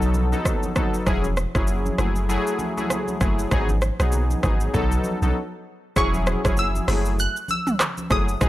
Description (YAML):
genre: afrobeats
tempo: 98 BPM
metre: 4/4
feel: swing 58% on 16ths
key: F# dorian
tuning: A4 = 441 Hz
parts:
  - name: warm analog keys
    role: accompaniment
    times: 0.0-8.5 s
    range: F#3 to A4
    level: -25 LUFS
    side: left 1 dB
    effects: chorus
  - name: punchy sub bass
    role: bass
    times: 0.0-8.5 s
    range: E1 to B1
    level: -23 LUFS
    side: equal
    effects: none
  - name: deep house drum kit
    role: drums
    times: 0.0-8.5 s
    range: handclaps, hi-hat, kick drum, rim click, shaker, toms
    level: -24 LUFS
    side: equal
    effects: overdrive
  - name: congas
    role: percussion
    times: 0.1-8.3 s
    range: none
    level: -33 LUFS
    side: right 1 dB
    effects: none
  - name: glassy wavetable pluck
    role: melody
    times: 6.0-8.5 s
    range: C#6 to F#6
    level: -26 LUFS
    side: equal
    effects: chorus
room: digital ambience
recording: dry, gritty hardware recording, transformer saturation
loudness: -20 LUFS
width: side -15 dB against mid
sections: 0.0-6.0 A section; 6.0-8.5 B section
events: break 5.4-6.0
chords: 0.0 B7; 1.1 E69; 2.0 F#m9; 3.5 G#m7; 4.7 B7; 6.0 E69; 6.9 F#m9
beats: 0.45 | 1.07 1.68 2.29 2.90 | 3.52 4.13 4.74 5.35 | 5.96 6.58 7.19 7.80 | 8.41